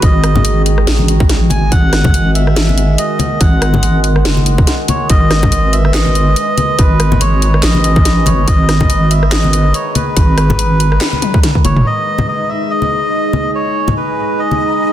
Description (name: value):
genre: deep dubstep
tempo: 142 BPM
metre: 4/4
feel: swing 56% on 16ths, half-time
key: G# phrygian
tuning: A4 = 441 Hz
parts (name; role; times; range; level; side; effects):
- melodica; melody; 0.0-14.9 s; B4 to G#5; -18 LUFS; equal; dub echo
- overtone-sweeping drone; sustained chords; 0.0-14.9 s; D#3 to B4; -20 LUFS; right 2 dB; chorus, built-in reverb
- deep soft wobble bass; bass; 0.0-11.8 s; F#1 to A1; -12 LUFS; equal; chorus
- electronic kick drum; drums; 0.0-11.6 s; none; -12 LUFS; equal; small room ambience
- garage drum kit; drums; 0.0-11.8 s; handclaps, hi-hat, rim click, snare drum, toms; -18 LUFS; equal; small room ambience, soft clipping on snare
- congas; percussion; 0.4-14.6 s; none; -19 LUFS; left 2 dB; none
- backwards swelling texture; texture; 12.4-14.9 s; D#4 to D#5; -22 LUFS; left 2 dB; built-in reverb
room: light reverb, digital ambience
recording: dense, heavily limited modern master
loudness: -10 LUFS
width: side -12 dB against mid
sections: 0.0-11.9 A section; 11.9-14.9 B section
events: drum fill 11.2-11.9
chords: 0.0 G#m; 11.9 G#5